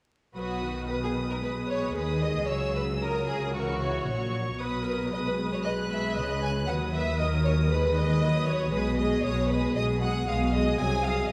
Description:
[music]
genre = quick classical-period movement for string orchestra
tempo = 115 BPM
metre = 4/4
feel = rubato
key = B major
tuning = A4 = 440 Hz
[part]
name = warm chamber violin section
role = melody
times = 0.4-11.3 s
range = C#6 to F#6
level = -40 LUFS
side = equal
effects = none
[part]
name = rich studio violin section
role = second line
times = 0.4-11.3 s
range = F#4 to G#5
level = -34 LUFS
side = equal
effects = none
[part]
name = rich chamber viola section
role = accompaniment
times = 0.4-11.3 s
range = D#3 to C#5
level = -35 LUFS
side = equal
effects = none
[part]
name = rich chamber double bass section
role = bass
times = 0.4-11.3 s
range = A#1 to D#2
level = -34 LUFS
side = equal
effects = none
[part]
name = warm chamber cello section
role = bass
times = 0.4-11.3 s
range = A#2 to D#3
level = -33 LUFS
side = equal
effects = none
[sound]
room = moderate scoring stage reverb, RT60 1.9 s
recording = vinyl crackle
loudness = -28 LUFS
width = mono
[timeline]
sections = 0.4-11.3 A section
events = none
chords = 0.4 B; 2.5 F#7/C#; 4.6 B; 6.7 B/D#; 8.7 G#m/B; 10.8 G#7/B#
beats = | 0.37 0.91 1.43 1.96 | 2.49 3.02 3.54 4.07 | 4.59 5.12 5.64 6.16 | 6.68 7.20 7.72 8.23 | 8.74 9.25 9.76 10.28 | 10.79 11.29

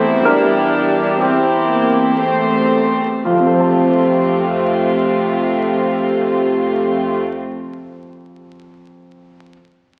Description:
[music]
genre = cinematic, emotional film score for orchestra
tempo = 56-65 BPM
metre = 3/4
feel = rubato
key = F major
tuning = A4 = 440 Hz
[part]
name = rich studio violin section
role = second line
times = 0.0-7.2 s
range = C4 to C5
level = -23 LUFS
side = equal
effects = none
[part]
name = clear grand piano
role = accompaniment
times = 0.0-9.5 s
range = E2 to A5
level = -23 LUFS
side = equal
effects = none
[part]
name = rich studio viola section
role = accompaniment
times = 0.0-7.2 s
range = C3 to D4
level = -19 LUFS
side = equal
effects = none
[part]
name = concert harp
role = arpeggios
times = 0.0-7.9 s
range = E2 to A5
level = -28 LUFS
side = equal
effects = none
[part]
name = warm studio cello section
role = bass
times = 0.0-7.2 s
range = E2 to F2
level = -30 LUFS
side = equal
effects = none
[sound]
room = wet scoring stage reverb, RT60 1.8 s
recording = very old 78 rpm record, vinyl crackle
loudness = -16 LUFS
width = mono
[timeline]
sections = 0.0-3.3 A section; 3.3-6.4 B section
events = slowing down 0.0-3.3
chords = 0.0 C/E; 3.3 F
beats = | 0.25 1.20 2.20 | 3.26 4.31 5.35

